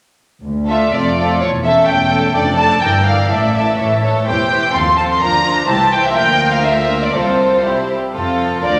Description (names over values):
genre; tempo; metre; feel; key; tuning
quick classical-period movement for string orchestra; 117-131 BPM; 2/4; rubato; D minor, F major from 4.3 s; A4 = 441 Hz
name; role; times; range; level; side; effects
dark studio double bass section; bass; 0.4-8.8 s; E1 to Eb2; -28 LUFS; equal; none
dark chamber cello section; bass; 0.5-8.8 s; C2 to A2; -24 LUFS; equal; none
dark studio violin section; melody; 0.7-8.8 s; C5 to C6; -17 LUFS; equal; none
clear studio violin section; second line; 0.7-8.8 s; E4 to D5; -22 LUFS; equal; none
dark studio viola section; accompaniment; 0.7-8.8 s; E3 to E4; -24 LUFS; equal; none
room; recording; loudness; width
wet scoring stage reverb, RT60 2.0 s; none; -15 LUFS; mono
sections
0.5-8.2 A section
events
none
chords
0.5 Dm; 0.9 F; 1.4 A7/E; 2.3 Dm/F; 2.8 Em7b5/G; 3.3 Asus4; 4.3 C/E; 4.8 F7/Eb; 5.2 Bb/D; 5.7 C; 6.2 Bb/D; 7.1 F/C; 7.7 C; 8.2 F